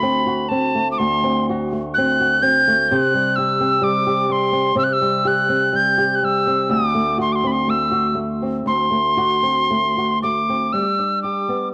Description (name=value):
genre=celtic folk, Celtic slow air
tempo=62 BPM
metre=4/4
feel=rubato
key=unclear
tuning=A4 = 445 Hz
part: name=wooden whistle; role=melody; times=0.0-11.7 s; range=A5 to G6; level=-20 LUFS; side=equal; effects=cassette tape, analog delay
part: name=flamenco guitar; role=accompaniment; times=0.0-11.7 s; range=D2 to G4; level=-23 LUFS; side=equal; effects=none
room=light reverb, studio reverb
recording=home recording on cassette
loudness=-19 LUFS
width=mono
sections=0.0-10.7 A section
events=none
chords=0.0 D7; 2.9 C5; 10.7 G